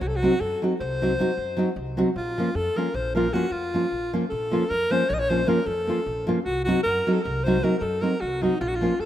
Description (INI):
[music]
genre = balkan folk, Balkan wedding band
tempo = 307 BPM (eighths)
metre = 11/8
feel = straight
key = unclear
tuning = A4 = 440 Hz
[part]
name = breathy alto saxophone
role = melody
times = 0.0-9.1 s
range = Eb4 to Eb5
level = -26 LUFS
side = left 1 dB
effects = none
[part]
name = upright bass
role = bass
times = 0.0-9.1 s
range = Bb1 to Gb2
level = -32 LUFS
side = equal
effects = none
[part]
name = nylon-string guitar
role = accompaniment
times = 0.2-8.9 s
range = F3 to Gb4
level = -24 LUFS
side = right 1 dB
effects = none
[sound]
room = light reverb, small room ambience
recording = rough home demo mix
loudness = -22 LUFS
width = side -11 dB against mid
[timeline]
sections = 0.0-9.1 A section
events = none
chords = 0.0 Cdim; 2.2 Bbm; 6.5 Cdim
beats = | 0.02 0.21 0.41 0.60 0.80 0.99 1.19 1.39 1.58 1.78 1.97 | 2.17 2.37 2.56 2.76 2.95 3.15 3.34 3.54 3.73 3.93 4.12 | 4.32 4.51 4.71 4.91 5.10 5.30 5.49 5.69 5.88 6.08 6.27 | 6.47 6.66 6.86 7.05 7.25 7.45 7.64 7.83 8.03 8.22 8.42 | 8.62 8.81 9.01